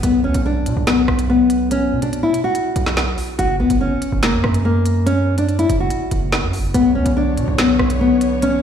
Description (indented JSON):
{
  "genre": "hip hop, drill",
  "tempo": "143 BPM",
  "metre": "4/4",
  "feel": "half-time",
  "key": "B harmonic minor",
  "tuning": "A4 = 440 Hz",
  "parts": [
    { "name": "nylon-string guitar", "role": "melody", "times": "0.0-8.6 s", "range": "A#3 to F#4", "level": "-17 LUFS", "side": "left 2 dB", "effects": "digital delay" },
    { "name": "distorted 808-style bass", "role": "bass", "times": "0.0-8.6 s", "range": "F#1 to B2", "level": "-20 LUFS", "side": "right 1 dB", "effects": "distortion" },
    { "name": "drill drum kit", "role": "drums", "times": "0.0-8.5 s", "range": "hi-hat, rim click, snare drum", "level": "-22 LUFS", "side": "right 1 dB", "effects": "none" },
    { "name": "dark studio string section", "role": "sustained chords", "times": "6.7-8.6 s", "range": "D3 to C#5", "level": "-25 LUFS", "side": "left 2 dB", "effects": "none" }
  ],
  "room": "light reverb, small room ambience",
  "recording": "played on a big sound system in a bare room, large studio reverb",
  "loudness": "-15 LUFS",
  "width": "side -8 dB against mid",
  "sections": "0.0-8.6 A section",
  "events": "none",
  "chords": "0.0 B5; 3.4 F#; 6.7 Bmadd9"
}